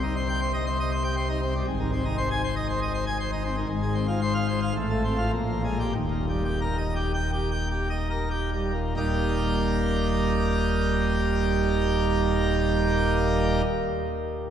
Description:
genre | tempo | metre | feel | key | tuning
classical, organ toccata | 66-121 BPM | 4/4 | straight | Eb major | A4 = 440 Hz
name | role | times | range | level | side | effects
pipe organ, plenum | solo | 0.0-13.6 s | Eb1 to Ab5 | -23 LUFS | equal | none
room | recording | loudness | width
wet cathedral reverb, RT60 5.2 s | recorded in a church or concert hall | -23 LUFS | side -9 dB against mid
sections
0.0-9.0 A section; 9.0-14.5 B section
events
slowing down 2.7-9.0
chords
0.0 Cm; 1.7 Ab; 3.7 Fm/Ab; 4.7 F/A; 5.3 Bb5; 5.9 Eb

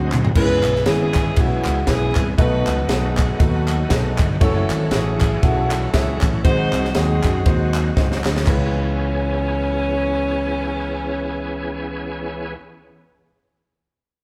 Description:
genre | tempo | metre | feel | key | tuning
uptempo gospel | 118 BPM | 4/4 | swing 57% on 8ths | C# minor | A4 = 440 Hz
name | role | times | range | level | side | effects
warm saxophone section | melody | 0.0-12.5 s | A3 to B#4 | -26 LUFS | equal | none
warm baby grand piano | accompaniment | 0.0-12.6 s | C#2 to E5 | -29 LUFS | equal | none
bright tonewheel organ | sustained chords | 0.0-12.5 s | D#3 to G#4 | -30 LUFS | equal | slow rotary speaker, chorus vibrato
fingered electric bass | bass | 0.0-12.5 s | F#1 to F#2 | -25 LUFS | equal | none
crisp fusion drum kit | drums | 0.1-8.6 s | crash cymbal, kick drum, ride cymbal, snare drum, toms | -22 LUFS | equal | none
group handclap | percussion | 0.1-8.7 s | none | -34 LUFS | equal | none
room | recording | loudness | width
moderate large studio reverb, RT60 1.5 s | band playing live in one room | -19 LUFS | mono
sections
0.4-8.5 A section; 8.5-12.5 B section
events
drum fill 0.0-0.4, 8.0-8.5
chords
0.4 C#m7; 2.4 B7; 4.4 F#m7; 6.4 G#7; 8.5 C#m7

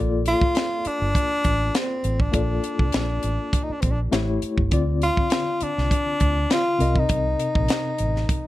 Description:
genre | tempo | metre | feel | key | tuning
lush 1970s-style soul | 101 BPM | 4/4 | swing 54% on 16ths | Bb major | A4 = 435 Hz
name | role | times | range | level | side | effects
tine electric piano | accompaniment | 0.0-8.5 s | C3 to Eb5 | -28 LUFS | left 4 dB | medium tremolo
vintage muted fingered electric bass | bass | 0.0-8.2 s | G1 to D2 | -24 LUFS | right 1 dB | none
breathy tenor saxophone | melody | 0.3-8.5 s | C4 to F4 | -24 LUFS | left 1 dB | none
tight funk drum kit | drums | 0.3-8.4 s | hi-hat, kick drum, snare drum | -24 LUFS | equal | none
room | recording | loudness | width
little or no reverb | dark, warm production | -20 LUFS | side -16 dB against mid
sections
0.0-8.5 A section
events
none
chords
0.0 Bbmaj7; 4.1 A7; 4.7 Dm7; 6.8 Cm7

